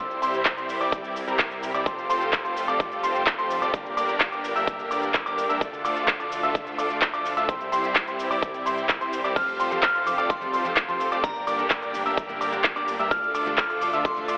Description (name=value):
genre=EDM, festival progressive house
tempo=128 BPM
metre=4/4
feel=straight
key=F major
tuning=A4 = 440 Hz
part: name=lush unison pad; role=sustained chords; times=0.0-14.4 s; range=C3 to G4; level=-34 LUFS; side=equal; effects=chorus, sidechain pumping
part: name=clear grand piano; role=arpeggios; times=0.0-14.4 s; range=Bb5 to E6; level=-28 LUFS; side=equal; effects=sidechain pumping, tape echo
part: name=supersaw chords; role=riff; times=0.0-14.4 s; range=G3 to E5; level=-28 LUFS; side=equal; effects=sidechain pumping, tape echo
part: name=wide detuned saw bass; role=bass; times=0.0-14.4 s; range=F1 to G2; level=-38 LUFS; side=equal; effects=chorus, sidechain pumping
part: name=big-room dance drum kit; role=drums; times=0.1-14.4 s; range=crash cymbal, handclaps, hi-hat, shaker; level=-26 LUFS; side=equal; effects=none
part: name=electronic kick drum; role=drums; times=0.5-14.1 s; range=none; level=-28 LUFS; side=equal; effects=none
part: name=glassy synth bell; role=melody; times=9.4-14.4 s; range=Bb5 to F6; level=-27 LUFS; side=equal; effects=chorus, phaser, tape echo
part: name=picked steel-string acoustic guitar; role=accompaniment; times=9.4-14.4 s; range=G2 to C5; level=-37 LUFS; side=equal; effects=sidechain pumping, tape echo
room=moderate lush hall reverb, RT60 1.8 s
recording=telephone sound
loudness=-22 LUFS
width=side -35 dB against mid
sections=0.0-14.4 A section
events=none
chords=0.0 C; 1.9 Fadd9; 3.7 Gm; 5.6 Dm; 7.5 C; 9.4 Fadd9; 11.2 Gm; 13.1 Dm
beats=0.46 0.92 1.39 | 1.86 2.33 2.80 3.27 | 3.74 4.21 4.67 5.14 | 5.61 6.08 6.55 7.02 | 7.49 7.96 8.42 8.89 | 9.36 9.83 10.30 10.77 | 11.24 11.71 12.17 12.64 | 13.11 13.58 14.05